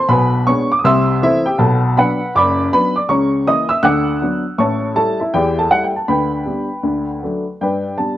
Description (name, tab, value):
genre	jazz, stride piano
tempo	160 BPM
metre	4/4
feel	swing 64% on 8ths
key	G major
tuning	A4 = 440 Hz
part	warm upright piano	solo	0.0-8.2 s	F#1 to F#6	-14 LUFS	equal	cassette tape
room	moderate spring reverb, RT60 1.3 s, small room ambience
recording	home recording on cassette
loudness	-14 LUFS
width	side -13 dB against mid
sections	0.0-7.6 A section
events	none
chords	0.1 G#dim/B; 0.8 Am/C; 1.6 Bm; 3.1 A#dim/C#; 3.8 Bm/D; 4.6 A7; 6.1 G/D; 6.8 D; 7.6 G